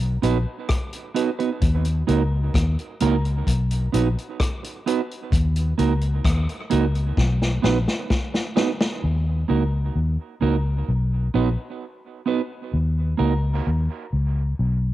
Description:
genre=dub reggae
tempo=65 BPM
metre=4/4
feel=straight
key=Eb minor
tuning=A4 = 445 Hz
part: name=vintage muted fingered electric bass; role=bass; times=0.0-14.9 s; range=Bb1 to Eb2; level=-21 LUFS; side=left 1 dB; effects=none
part: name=mellow electric guitar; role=accompaniment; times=0.2-13.3 s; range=Bb3 to B4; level=-26 LUFS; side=right 7 dB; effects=dub echo
part: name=vintage drum kit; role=drums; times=0.2-9.0 s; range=hi-hat, kick drum, rim click, snare drum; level=-23 LUFS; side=left 1 dB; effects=cassette tape
room=light reverb, studio reverb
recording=home recording on cassette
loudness=-20 LUFS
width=side -14 dB against mid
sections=0.0-9.0 A section; 9.0-14.9 B section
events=drum fill 7.2-9.0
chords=0.0 B; 1.6 Ebm; 3.5 B; 5.3 Ebm; 7.2 B; 9.0 Ebm; 10.9 B; 12.7 Eb5

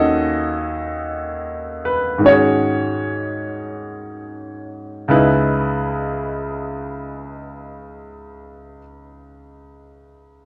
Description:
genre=jazz ballad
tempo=free time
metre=none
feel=none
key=C# minor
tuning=A4 = 440 Hz
part: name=clear concert grand piano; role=solo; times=0.0-10.5 s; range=C#2 to D#5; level=-20 LUFS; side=equal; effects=none
room=wet club reverb, RT60 0.7 s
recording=none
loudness=-20 LUFS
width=mono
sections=0.0-5.1 A section; 5.1-10.5 B section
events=slowing down 0.0-5.1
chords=0.0 D#m7b5; 2.2 G#7sus4; 5.1 C#m7

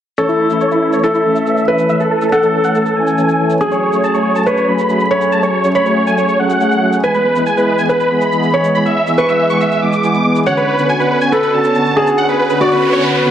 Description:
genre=uplifting trance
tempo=140 BPM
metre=4/4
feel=straight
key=A major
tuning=A4 = 440 Hz
part: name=supersaw chords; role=melody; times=0.2-13.3 s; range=E4 to D6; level=-16 LUFS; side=right 1 dB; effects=low-pass filter, tape echo
part: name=felt-muted upright piano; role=second line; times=0.2-13.3 s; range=F#4 to C#5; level=-16 LUFS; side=equal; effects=tape echo
part: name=filtered supersaw swell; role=sustained chords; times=0.2-13.3 s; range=D3 to A4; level=-16 LUFS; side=equal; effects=none
part: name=shaker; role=drums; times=0.2-13.2 s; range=none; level=-42 LUFS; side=left 6 dB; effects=low-pass filter on perc
part: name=noise sweep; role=sound effects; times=12.5-13.3 s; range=none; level=-21 LUFS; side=right 2 dB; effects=none
room=moderate lush hall reverb, RT60 1.7 s, digital ambience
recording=heavily compressed radio sound, multiband compression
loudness=-11 LUFS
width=side -10 dB against mid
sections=0.2-13.3 A section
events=filter sweep on supersaw synth 0.2-13.3; noise sweep 12.5-13.3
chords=0.2 A; 3.6 F#madd9; 7.0 E; 10.5 Bmadd9

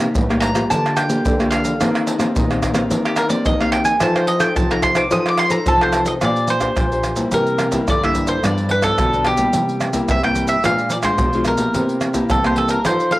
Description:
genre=samba and choro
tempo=109 BPM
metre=4/4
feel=straight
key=unclear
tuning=A4 = 440 Hz
part: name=nylon-string guitar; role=accompaniment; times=0.0-13.2 s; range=G2 to C5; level=-22 LUFS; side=left 1 dB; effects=cassette tape
part: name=nylon-string guitar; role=bass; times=0.0-13.2 s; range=G2 to F3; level=-23 LUFS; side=equal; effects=none
part: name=maracas, pandeiro, tamborim and surdo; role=percussion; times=0.0-13.2 s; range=none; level=-21 LUFS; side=right 1 dB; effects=none
part: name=bowl-back mandolin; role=melody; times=0.4-13.2 s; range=G4 to Eb6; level=-19 LUFS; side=equal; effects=cassette tape
room=moderate spring reverb, RT60 1.7 s, small room ambience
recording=home recording on cassette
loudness=-15 LUFS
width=side -17 dB against mid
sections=0.0-6.2 A section; 6.2-13.2 B section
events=mandolin solo 0.0-6.2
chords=0.0 Cm7; 0.7 Gm7/D; 1.8 Eb6; 2.9 Cm7/Eb; 4.0 F7; 6.2 Bb69; 7.3 C7; 8.4 G7; 9.5 C7; 10.6 Bb7; 11.7 C7

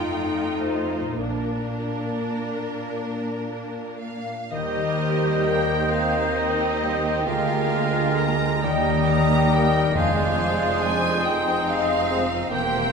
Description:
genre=classical, slow romantic movement for symphony orchestra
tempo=35-48 BPM (dotted quarters)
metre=6/8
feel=rubato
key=Bb major, Eb major from 4.5 s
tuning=A4 = 439 Hz
part: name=rich symphonic violin section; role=melody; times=0.0-12.9 s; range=Bb4 to Bb5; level=-29 LUFS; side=left 2 dB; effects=none
part: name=rich symphonic violin section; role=second line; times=0.0-12.9 s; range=D4 to C5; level=-31 LUFS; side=equal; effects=none
part: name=rich symphonic viola section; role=accompaniment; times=0.0-12.9 s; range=G3 to G4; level=-30 LUFS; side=right 3 dB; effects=none
part: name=mellow French horn section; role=sustained chords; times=0.0-12.2 s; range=G3 to Eb4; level=-32 LUFS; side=left 2 dB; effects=none
part: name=concert harp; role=arpeggios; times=0.0-12.9 s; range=F2 to Eb5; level=-28 LUFS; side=left 6 dB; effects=none
part: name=clear symphonic cello section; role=bass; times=0.0-12.9 s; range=D2 to Bb2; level=-31 LUFS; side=right 5 dB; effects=none
part: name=rich symphonic double bass section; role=bass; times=0.0-12.9 s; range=E1 to Eb2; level=-31 LUFS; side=right 5 dB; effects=none
part: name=mellow large flute ensemble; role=second line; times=4.5-12.9 s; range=Eb6 to G6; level=-31 LUFS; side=left 1 dB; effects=none
part: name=warm oboe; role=second line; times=4.5-12.9 s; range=Bb4 to Eb5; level=-30 LUFS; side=right 2 dB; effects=none
part: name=clear bassoon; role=accompaniment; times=4.5-12.9 s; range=Eb3 to Bb3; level=-27 LUFS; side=equal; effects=none
part: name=timpani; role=percussion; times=10.0-11.2 s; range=F2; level=-30 LUFS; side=right 1 dB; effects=none
room=wet scoring stage reverb, RT60 1.7 s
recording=minimal, uncompressed stereo recording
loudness=-20 LUFS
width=side -5 dB against mid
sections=0.0-4.5 A section; 4.5-12.9 B section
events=none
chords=0.0 F9; 1.2 Bb; 4.5 Eb; 7.3 Bb7/D; 8.6 Eb; 10.0 Fm7

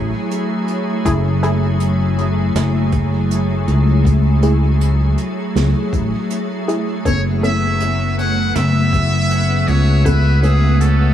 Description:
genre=ambient dub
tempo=80 BPM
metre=4/4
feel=straight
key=F# minor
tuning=A4 = 440 Hz
part: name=soft additive organ-like pad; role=sustained chords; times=0.0-11.1 s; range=C#3 to G#4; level=-20 LUFS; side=equal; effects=ensemble chorus, built-in reverb
part: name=fingered electric bass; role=bass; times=0.0-11.1 s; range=F#1 to C#2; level=-15 LUFS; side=left 1 dB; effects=none
part: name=soft brush drum kit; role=drums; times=0.3-11.0 s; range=hi-hat, snare drum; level=-29 LUFS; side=right 6 dB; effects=dub echo
part: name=filtered dub chord stab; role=stabs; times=1.1-10.7 s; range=A3 to A4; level=-26 LUFS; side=equal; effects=chorus, dub echo
part: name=electronic kick drum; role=drums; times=1.1-10.2 s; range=none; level=-21 LUFS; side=equal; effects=none
part: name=trumpet with metal mute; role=melody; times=7.1-11.1 s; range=G#4 to F#5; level=-20 LUFS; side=equal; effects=dub echo
room=light reverb, small room ambience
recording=none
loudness=-14 LUFS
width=side -10 dB against mid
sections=0.0-11.1 A section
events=none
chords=0.0 F#m9; 7.1 Aadd9/F#

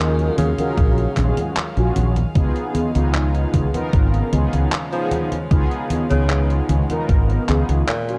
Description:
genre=vaporwave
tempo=76 BPM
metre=4/4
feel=straight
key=unclear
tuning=A4 = 440 Hz
part: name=clear tenor saxophone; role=melody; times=0.0-8.2 s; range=Bb2 to F3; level=-29 LUFS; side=equal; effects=tape echo
part: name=mellow synth brass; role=accompaniment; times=0.0-8.2 s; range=Cb4 to Bb4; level=-26 LUFS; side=equal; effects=subtle chorus, analog delay
part: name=warm studio string section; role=sustained chords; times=0.0-8.2 s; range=Db3 to F5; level=-34 LUFS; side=equal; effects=none
part: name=mellow fretless electric bass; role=bass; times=0.0-7.8 s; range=Ab1 to Eb2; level=-21 LUFS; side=equal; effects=subtle chorus
part: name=detuned 8-bit digital drum machine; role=drums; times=0.2-8.2 s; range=congas, handclaps, hi-hat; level=-28 LUFS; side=equal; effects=overdrive, vintage 12-bit sampler grit
part: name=electronic kick drum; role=drums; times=0.8-7.3 s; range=none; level=-20 LUFS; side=equal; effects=overdrive, vintage 12-bit sampler grit
room=light reverb, digital ambience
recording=dark, warm production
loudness=-19 LUFS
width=mono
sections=0.0-8.2 A section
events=none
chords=0.0 Ebm11; 2.4 Db7

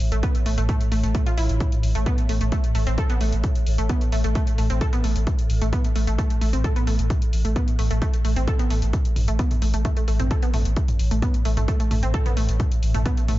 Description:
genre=driving peak-time techno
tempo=131 BPM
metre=4/4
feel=straight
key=unclear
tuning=A4 = 440 Hz
part: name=saturated sub bass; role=bass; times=0.0-13.4 s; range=A1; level=-22 LUFS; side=equal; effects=tube saturation, sidechain pumping, low-pass filter
part: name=swarming drone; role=drone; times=0.0-13.4 s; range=A2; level=-31 LUFS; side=left 2 dB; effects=built-in reverb, sidechain pumping
part: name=punchy analog drum machine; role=drums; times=0.0-13.4 s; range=hi-hat, toms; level=-34 LUFS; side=equal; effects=overdrive
part: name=wide unison pluck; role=riff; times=0.1-13.3 s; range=A3 to A4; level=-29 LUFS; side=right 1 dB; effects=overdrive, sidechain pumping, digital delay
part: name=electronic kick drum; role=drums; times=0.2-13.2 s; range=none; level=-23 LUFS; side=equal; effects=none
room=digital ambience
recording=nothing above 7.6 kHz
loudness=-20 LUFS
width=side -16 dB against mid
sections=0.0-13.4 A section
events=none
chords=none

